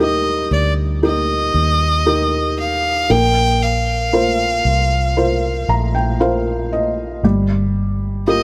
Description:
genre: pop ballad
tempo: 58 BPM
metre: 4/4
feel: straight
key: Bb major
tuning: A4 = 440 Hz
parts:
  - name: clear violin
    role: melody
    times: 0.0-8.4 s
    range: D5 to G5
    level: -21 LUFS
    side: equal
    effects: none
  - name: felt-muted upright piano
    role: accompaniment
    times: 0.0-8.4 s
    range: G3 to Bb5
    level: -21 LUFS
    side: equal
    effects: none
  - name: vintage muted fingered electric bass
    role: bass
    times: 0.0-8.4 s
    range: G1 to Eb2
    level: -22 LUFS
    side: equal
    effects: none
room: light reverb, small room ambience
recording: none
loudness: -17 LUFS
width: mono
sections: 0.0-8.4 A section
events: felt piano fill 5.2-7.2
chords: 0.0 Eb; 3.1 Bbsus2; 7.2 Gm7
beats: 0.00 1.03 2.07 | 3.10 4.14 5.17 6.21 | 7.24 8.28

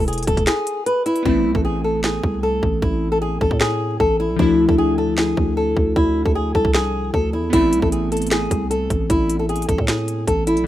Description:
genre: hip hop, trap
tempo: 153 BPM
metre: 4/4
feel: half-time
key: A harmonic minor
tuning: A4 = 440 Hz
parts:
  - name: flamenco guitar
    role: melody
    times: 0.0-10.7 s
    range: E4 to B4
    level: -20 LUFS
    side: equal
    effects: none
  - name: growling 808-style bass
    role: bass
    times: 0.0-10.7 s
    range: D1 to A2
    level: -23 LUFS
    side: equal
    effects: none
  - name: trap drum kit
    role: drums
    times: 0.1-10.7 s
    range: finger snaps, hi-hat, kick drum, snare drum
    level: -22 LUFS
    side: equal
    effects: none
  - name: glassy digital keys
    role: accompaniment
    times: 1.2-10.7 s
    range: E3 to E4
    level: -24 LUFS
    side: left 2 dB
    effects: chorus
room: little or no reverb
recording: rough home demo mix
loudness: -16 LUFS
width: side -13 dB against mid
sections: 0.0-10.7 A section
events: kick muted 0.5-1.3; hi-hats muted 1.3-7.5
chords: 0.0 E; 1.3 Amadd9; 4.4 Dmadd9; 7.5 Amadd9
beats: 0.08 0.47 0.86 | 1.25 1.65 2.04 2.43 | 2.82 3.22 3.61 4.00 | 4.39 4.79 5.18 5.57 | 5.96 6.35 6.75 7.14 | 7.53 7.92 8.31 8.71 | 9.10 9.49 9.88 10.28 | 10.67

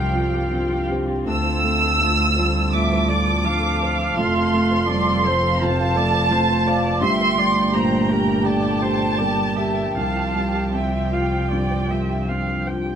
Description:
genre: neoclassical piano and strings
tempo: 83 BPM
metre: 4/4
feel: uneven beats, rubato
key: unclear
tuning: A4 = 440 Hz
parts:
  - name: muted chamber violin section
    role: melody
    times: 0.0-12.7 s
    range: G5 to E6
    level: -22 LUFS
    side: right 1 dB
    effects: none
  - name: muted cello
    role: second line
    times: 0.0-12.8 s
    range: F3 to C4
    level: -26 LUFS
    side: right 3 dB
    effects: none
  - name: muted viola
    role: accompaniment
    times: 0.0-13.0 s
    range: Bb4 to G5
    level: -28 LUFS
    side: right 1 dB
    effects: none
  - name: warm baby grand piano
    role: accompaniment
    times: 0.0-13.0 s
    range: C2 to C5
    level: -25 LUFS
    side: left 1 dB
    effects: none
  - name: muted chamber string section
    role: sustained chords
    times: 0.0-13.0 s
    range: G3 to G5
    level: -31 LUFS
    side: equal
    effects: none
  - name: concert harp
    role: arpeggios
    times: 0.0-13.0 s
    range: C4 to G5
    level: -29 LUFS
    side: right 2 dB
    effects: none
  - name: muted double bass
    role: bass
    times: 0.0-13.0 s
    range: F1 to D2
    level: -25 LUFS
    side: equal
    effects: none
room: moderate studio reverb, RT60 0.6 s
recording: band playing live in one room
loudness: -18 LUFS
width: side -8 dB against mid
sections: 0.0-13.0 A section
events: none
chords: 0.0 Csus4; 1.3 Dm7; 4.2 F; 7.0 Gm; 9.9 Csus4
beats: 0.52 | 1.26 2.01 2.74 3.46 | 4.18 4.89 5.61 6.32 | 7.03 7.73 8.44 9.18 | 9.95 10.73 11.50 12.28

